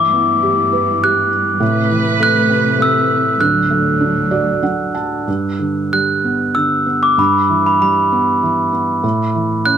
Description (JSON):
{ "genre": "children's music, lullaby", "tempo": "93-102 BPM", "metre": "3/4", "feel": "rubato", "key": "G major", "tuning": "A4 = 440 Hz", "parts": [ { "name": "glockenspiel with rubber mallets", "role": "melody", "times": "0.0-9.8 s", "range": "B5 to F#6", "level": "-15 LUFS", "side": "equal", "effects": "none" }, { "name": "felt-muted upright piano", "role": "accompaniment", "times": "0.0-9.8 s", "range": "G2 to A5", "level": "-18 LUFS", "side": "right 2 dB", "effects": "none" }, { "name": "dark studio string section", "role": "sustained chords", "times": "0.0-5.2 s", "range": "D2 to B4", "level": "-20 LUFS", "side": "right 1 dB", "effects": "none" } ], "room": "moderate spring reverb, RT60 2.5 s", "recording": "none", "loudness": "-13 LUFS", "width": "side -8 dB against mid", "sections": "0.0-5.3 A section; 5.3-9.8 B section", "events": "felt piano fill 4.0-5.3", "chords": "0.0 Em; 1.6 Amadd9; 3.4 D; 5.3 G; 7.2 Em/G; 9.0 A", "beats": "0.43 1.02 | 1.61 2.20 2.80 | 3.40 4.01 4.63 | 5.27 5.92 6.55 | 7.18 7.81 8.43 | 9.04 9.65" }